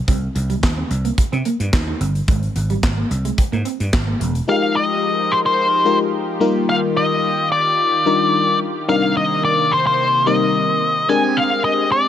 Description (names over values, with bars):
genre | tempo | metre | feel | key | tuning
early-eighties boogie funk | 109 BPM | 4/4 | straight | F dorian | A4 = 440 Hz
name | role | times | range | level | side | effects
clean electric guitar | riff | 0.1-4.3 s | G3 to Eb4 | -26 LUFS | right 5 dB | analog chorus
vintage slap bass | bass | 0.1-4.4 s | E1 to C3 | -20 LUFS | right 1 dB | none
modern studio drum kit | drums | 0.1-4.5 s | handclaps, hi-hat, kick drum, snare drum | -20 LUFS | equal | gated reverb
octave-fuzz lead guitar | melody | 4.5-12.1 s | C5 to Ab5 | -17 LUFS | left 2 dB | distortion
FM electric piano with soft pad layer | accompaniment | 4.5-11.9 s | G3 to Bb4 | -20 LUFS | left 4 dB | chorus
brassy analog pad | sustained chords | 4.5-12.1 s | C3 to Bb4 | -25 LUFS | right 2 dB | chorus
room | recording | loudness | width
small room ambience | none | -15 LUFS | side -10 dB against mid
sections
0.0-4.5 A section; 4.5-12.1 B section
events
none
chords
0.1 Cm; 2.3 Abadd9; 4.5 Fm11; 6.4 Ebmaj9; 8.9 Cm9; 11.1 Abmaj9#11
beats
| 0.08 0.63 1.18 1.73 | 2.28 2.83 3.38 3.93 | 4.48 5.03 5.58 6.13 | 6.68 7.24 7.79 8.34 | 8.89 9.44 9.99 10.54 | 11.09 11.64